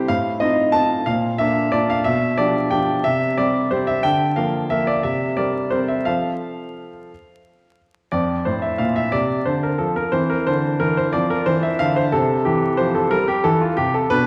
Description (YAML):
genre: classical-period piano sonatina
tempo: 60 BPM (dotted quarters)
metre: 6/8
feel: straight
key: F major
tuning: A4 = 438 Hz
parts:
  - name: clear baby grand piano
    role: solo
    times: 0.0-14.3 s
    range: F2 to A5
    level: -20 LUFS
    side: equal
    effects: none
room: wet scoring stage reverb, RT60 1.7 s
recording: recorded in a church or concert hall, vinyl crackle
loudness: -20 LUFS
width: mono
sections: 0.0-8.1 A section; 8.1-14.3 B section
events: none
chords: 0.1 F7/A; 1.1 Bb; 2.1 G7/B; 3.0 C5; 4.0 Bb/D; 5.0 C5; 6.1 F; 10.1 C; 11.1 F5; 12.1 C